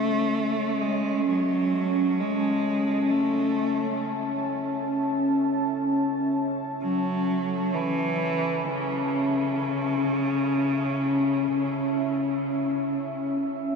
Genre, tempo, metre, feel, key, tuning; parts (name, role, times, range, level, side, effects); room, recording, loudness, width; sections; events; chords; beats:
ambient; free time; A4 = 440 Hz
rich cello; melody; 0.0-13.3 s; C#3 to A3; -28 LUFS; right 1 dB; shimmer reverb, ping-pong delay
deep dark ambient pad; sustained chords; 0.0-13.8 s; C#4 to A5; -25 LUFS; left 1 dB; chorus, built-in reverb, shimmer reverb
wet huge ambient reverb, RT60 7.6 s; in a vast, echoing space, cassette tape; -23 LUFS; side -5 dB against mid
0.0-13.8 A section
0.0 A
free time